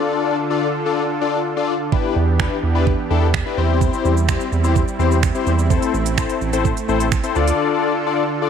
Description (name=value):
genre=dance-pop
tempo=127 BPM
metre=4/4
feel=straight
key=unclear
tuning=A4 = 440 Hz
part: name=big bright polysynth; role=accompaniment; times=0.0-8.5 s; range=C4 to D5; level=-20 LUFS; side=left 9 dB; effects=sidechain pumping
part: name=soft supersaw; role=sustained chords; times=0.0-8.5 s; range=D3 to A4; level=-24 LUFS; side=right 2 dB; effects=sidechain pumping
part: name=pop drum kit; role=drums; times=1.9-7.6 s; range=finger snaps, hi-hat, kick drum, shaker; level=-21 LUFS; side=right 5 dB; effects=none
part: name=round analog bass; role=bass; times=2.2-7.5 s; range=A1 to E2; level=-18 LUFS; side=right 2 dB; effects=sidechain pumping
room=light reverb, digital ambience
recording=1960s-style stereo, faint mains hum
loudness=-16 LUFS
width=side -7 dB against mid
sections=0.0-8.5 A section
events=none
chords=0.0 Dm; 1.9 Em7; 3.6 C/E; 5.7 Am; 7.4 Dm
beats=| 0.03 0.51 0.98 1.45 | 1.92 2.40 2.87 3.34 | 3.81 4.29 4.76 5.23 | 5.70 6.18 6.65 7.12 | 7.59 8.07